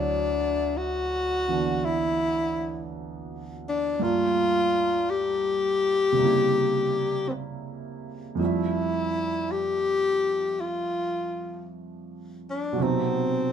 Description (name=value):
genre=jazz ballad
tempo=55 BPM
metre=4/4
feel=swing 68% on 8ths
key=unclear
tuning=A4 = 438 Hz
part: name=breathy tenor saxophone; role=melody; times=0.0-13.5 s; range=B3 to G4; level=-24 LUFS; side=left 2 dB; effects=none
part: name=warm concert grand piano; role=accompaniment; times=0.0-13.5 s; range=D2 to E5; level=-29 LUFS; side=right 4 dB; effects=none
room=moderate studio reverb, RT60 0.6 s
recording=minimal, uncompressed stereo recording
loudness=-23 LUFS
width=side -8 dB against mid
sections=0.0-13.5 A section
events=none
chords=0.0 Dmaj9; 4.0 Gm9; 6.2 C7b9; 8.4 Fmaj9; 12.8 B7b9